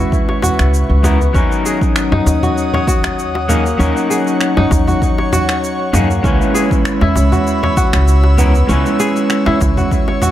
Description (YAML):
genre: organic downtempo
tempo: 98 BPM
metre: 4/4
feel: swing 54% on 16ths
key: C# dorian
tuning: A4 = 441 Hz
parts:
  - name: electric guitar at the edge of break-up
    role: accompaniment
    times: 0.0-10.3 s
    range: F#3 to B4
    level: -18 LUFS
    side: left 1 dB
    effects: sidechain pumping, analog delay
  - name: airy breathy pad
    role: sustained chords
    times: 0.0-10.3 s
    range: B4 to E6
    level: -23 LUFS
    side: equal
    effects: chorus, sidechain pumping
  - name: kora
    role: arpeggios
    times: 0.0-10.3 s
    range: A#3 to C#5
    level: -19 LUFS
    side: equal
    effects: low-pass filter, analog delay
  - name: electronic kick drum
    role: drums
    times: 0.1-10.0 s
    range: none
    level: -17 LUFS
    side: equal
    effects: overdrive
  - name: organic electronic drum kit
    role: drums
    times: 0.1-10.3 s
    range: finger snaps, shaker, toms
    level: -20 LUFS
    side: right 1 dB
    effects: none
  - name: darbuka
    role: percussion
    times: 0.3-10.3 s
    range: none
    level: -27 LUFS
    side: left 3 dB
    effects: none
  - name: upright bass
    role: bass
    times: 0.6-9.7 s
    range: C#2 to F#2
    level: -13 LUFS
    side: equal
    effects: sidechain pumping
room: moderate plate reverb, RT60 1.8 s, digital ambience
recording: echo-heavy mix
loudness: -12 LUFS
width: side -12 dB against mid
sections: 0.0-10.3 A section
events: none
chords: 0.0 C#m7; 1.3 D#m7; 6.2 C#m7